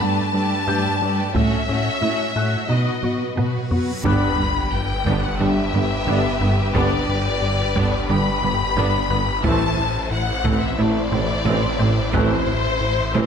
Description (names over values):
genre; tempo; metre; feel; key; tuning
cinematic, hybrid orchestral and electronic film score; 89 BPM; 4/4; straight; unclear; A4 = 441 Hz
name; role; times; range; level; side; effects
warm symphonic violin section; melody; 0.0-13.3 s; C5 to B5; -24 LUFS; left 4 dB; none
warm symphonic violin section; second line; 0.0-13.3 s; E4 to C#5; -29 LUFS; left 3 dB; none
warm symphonic viola section; accompaniment; 0.0-13.3 s; E3 to F#4; -28 LUFS; right 1 dB; none
resonant blip pluck; arpeggios; 0.0-13.3 s; G3 to F#4; -31 LUFS; right 2 dB; none
rubbery square bass; riff; 0.0-13.3 s; G2 to B3; -25 LUFS; left 2 dB; none
rich symphonic cello section; bass; 0.0-13.2 s; G2 to B2; -27 LUFS; right 5 dB; none
dark concert grand piano; texture; 0.0-13.3 s; E4 to A6; -34 LUFS; left 3 dB; ping-pong delay
reverse cymbal and sub drop; sound effects; 3.7-6.7 s; none; -30 LUFS; equal; none
taiko ensemble; drums; 1.4-13.3 s; none; -27 LUFS; equal; none
dark French horn section; sustained chords; 4.0-12.4 s; C4 to G4; -30 LUFS; left 4 dB; none
snarling distorted saw bass; bass; 4.0-13.3 s; G1 to A1; -28 LUFS; equal; distortion
warm symphonic double bass section; bass; 4.0-13.2 s; G1 to A1; -28 LUFS; right 5 dB; none
warm tuba; bass; 4.0-13.3 s; G1 to A1; -29 LUFS; right 4 dB; none
warm trombone section; sustained chords; 4.1-12.4 s; D3 to A3; -31 LUFS; right 4 dB; none
room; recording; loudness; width
wet scoring stage reverb, RT60 1.7 s; none; -18 LUFS; side -7 dB against mid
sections
0.0-4.1 A section; 4.1-13.3 B section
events
drum fill 3.0-4.1; reverse cymbal 3.7-4.1; impact 4.1-6.7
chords
0.0 Gadd9; 1.4 A6; 2.7 B; 4.1 G; 9.4 Am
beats
0.01 0.68 | 1.35 2.03 2.70 3.38 | 4.05 4.72 5.40 6.07 | 6.75 7.42 8.10 8.77 | 9.44 10.12 10.79 11.47 | 12.14 12.81